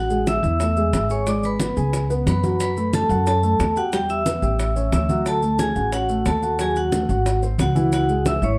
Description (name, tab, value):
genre	latin, salsa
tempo	180 BPM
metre	4/4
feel	straight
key	A major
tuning	A4 = 440 Hz
part	vibraphone with medium hard mallets	melody	0.0-8.6 s	F#4 to E6	-26 LUFS	equal	none
part	upright bass	bass	0.0-8.6 s	G#1 to F#2	-25 LUFS	equal	none
part	dark baby grand piano	accompaniment	0.1-8.6 s	E3 to G#5	-28 LUFS	equal	none
part	congas	percussion	0.1-8.6 s	none	-31 LUFS	equal	none
part	maracas	percussion	0.1-8.6 s	none	-40 LUFS	equal	none
part	bongos	percussion	0.3-8.4 s	none	-32 LUFS	equal	none
room	light reverb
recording	dark, warm production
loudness	-21 LUFS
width	mono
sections	0.0-8.6 A section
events	none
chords	0.0 Amaj7; 1.3 G#dim; 1.9 C#5; 2.6 F#m7; 3.9 Em; 4.6 A7; 5.3 Dmaj7; 6.6 D#dim; 7.3 G#7; 7.9 C#m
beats	0.27 0.60 0.94 | 1.27 1.60 1.93 2.27 | 2.60 2.93 3.26 3.60 | 3.93 4.26 4.59 4.93 | 5.26 5.59 5.92 6.26 | 6.59 6.92 7.26 7.59 | 7.92 8.26